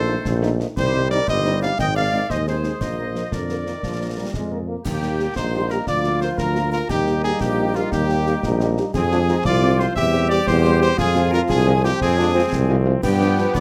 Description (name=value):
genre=military-style march for wind band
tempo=117 BPM (dotted quarters)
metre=6/8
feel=straight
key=Eb major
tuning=A4 = 440 Hz
part: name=mellow cornet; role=melody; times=0.0-13.6 s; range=F4 to G5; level=-28 LUFS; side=equal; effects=none
part: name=flute section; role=second line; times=0.0-13.6 s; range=C5 to E6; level=-32 LUFS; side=equal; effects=none
part: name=mellow woodwind section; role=second line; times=0.0-13.6 s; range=F4 to E5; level=-32 LUFS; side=equal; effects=none
part: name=dark trombone section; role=sustained chords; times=0.0-13.6 s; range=D3 to C4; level=-31 LUFS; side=equal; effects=none
part: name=mellow tuba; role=bass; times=0.0-13.6 s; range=G1 to G2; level=-24 LUFS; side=equal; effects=none
part: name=mellow French horn section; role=accompaniment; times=0.1-13.4 s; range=F3 to Bb4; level=-29 LUFS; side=equal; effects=none
part: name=concert snare drum, concert bass drum and clash cymbals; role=drums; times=0.3-13.6 s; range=none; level=-32 LUFS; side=equal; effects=none
part: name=clear euphonium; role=second line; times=4.9-13.6 s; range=Bb3 to G4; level=-28 LUFS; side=equal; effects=none
room=light reverb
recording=close, detailed microphones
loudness=-20 LUFS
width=mono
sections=0.0-4.9 A section; 4.9-13.6 B section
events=none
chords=0.0 F7/Bb; 0.8 Cm; 1.8 Ab; 2.8 Bb; 4.9 Eb; 5.9 Bb/D; 6.9 Eb; 8.9 Fm; 10.0 C/E; 11.0 Fm; 13.0 G7